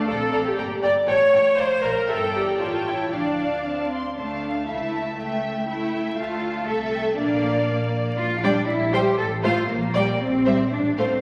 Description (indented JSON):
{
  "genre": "quick classical-period movement for string orchestra",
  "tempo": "119 BPM",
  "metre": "2/4",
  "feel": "straight",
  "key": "D minor",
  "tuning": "A4 = 440 Hz",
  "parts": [
    { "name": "warm symphonic violin section", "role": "melody", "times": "0.0-11.1 s", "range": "E5 to C6", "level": "-37 LUFS", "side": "equal", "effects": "none" },
    { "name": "rich symphonic violin section", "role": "second line", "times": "0.0-11.1 s", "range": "C5 to G5", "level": "-30 LUFS", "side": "equal", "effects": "none" },
    { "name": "rich studio viola section", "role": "accompaniment", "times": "0.0-11.1 s", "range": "G3 to D5", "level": "-26 LUFS", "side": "equal", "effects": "none" },
    { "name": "rich symphonic cello section", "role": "bass", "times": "0.0-11.2 s", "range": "E3 to A4", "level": "-28 LUFS", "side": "equal", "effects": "none" },
    { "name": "rich symphonic double bass section", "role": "bass", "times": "0.0-11.2 s", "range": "G1 to D2", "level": "-34 LUFS", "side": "equal", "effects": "none" }
  ],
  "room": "wet scoring stage reverb, RT60 1.8 s",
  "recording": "vinyl crackle",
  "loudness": "-23 LUFS",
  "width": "mono",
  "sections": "0.0-4.2 A section; 4.2-11.2 B section",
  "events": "none",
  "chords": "0.1 N.C.; 0.6 Gm; 1.1 A7; 1.6 Bb5; 2.1 Edim/G; 2.6 A7; 3.1 Dm; 4.7 A/C#; 6.2 Dm; 6.7 Am/C; 7.2 Bb; 8.2 Gm7/Bb; 8.7 C7/Bb; 9.2 F/A; 9.7 Gm/Bb; 10.2 C7/Bb"
}